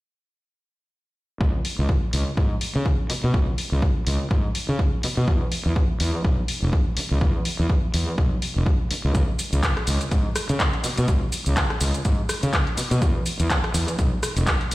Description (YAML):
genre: filtered disco house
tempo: 124 BPM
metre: 4/4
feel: swing 57% on 16ths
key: unclear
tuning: A4 = 442 Hz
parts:
  - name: fuzz fingered electric bass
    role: bass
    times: 1.4-14.7 s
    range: E1 to C#3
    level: -24 LUFS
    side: equal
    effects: overdrive, sidechain pumping, low-pass filter
  - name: electronic kick drum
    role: drums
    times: 1.4-14.6 s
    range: none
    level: -23 LUFS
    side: equal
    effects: small room ambience
  - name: house drum kit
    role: drums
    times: 1.6-14.7 s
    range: cabasa, handclaps, hi-hat, rim click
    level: -27 LUFS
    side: equal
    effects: sidechain pumping on hats, small room ambience, sidechain pumping on perc
room: little or no reverb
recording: played on a big sound system in a bare room, stone room reverb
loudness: -20 LUFS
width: side -18 dB against mid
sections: 1.4-14.7 A section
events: none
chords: none